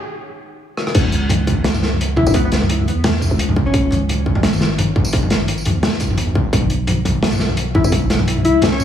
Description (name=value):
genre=half-time drum and bass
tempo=172 BPM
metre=4/4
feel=swing 55% on 16ths, half-time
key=C# minor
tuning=A4 = 439 Hz
part: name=crunchy breakbeat drum kit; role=drums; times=0.8-8.8 s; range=crash cymbal, hi-hat, rim click, snare drum, tambourine, toms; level=-18 LUFS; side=equal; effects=none
part: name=growling 808-style bass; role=bass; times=0.9-8.8 s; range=G#1 to F#2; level=-19 LUFS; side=equal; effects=tube saturation, high-pass filter
part: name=electronic kick drum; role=drums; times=0.9-8.8 s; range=none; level=-19 LUFS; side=equal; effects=distortion, high-pass filter on kick
part: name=mellow alto saxophone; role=melody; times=2.2-4.0, 7.7-8.8 s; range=B3 to E4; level=-20 LUFS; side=left 2 dB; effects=vintage 12-bit sampler grit, dub echo
room=light reverb, small room ambience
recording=heavily compressed radio sound, small room reverb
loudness=-14 LUFS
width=side -9 dB against mid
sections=0.9-8.8 A section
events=break 0.0-0.9; drum fill 0.8; drop 0.9-8.8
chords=0.0 N.C.; 0.9 C#m; 6.5 Bsus2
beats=0.25 0.60 | 0.95 1.30 1.65 2.00 | 2.34 2.69 3.04 3.39 | 3.74 4.09 4.44 4.79 | 5.13 5.48 5.83 6.18 | 6.53 6.88 7.23 7.58 | 7.92 8.27 8.62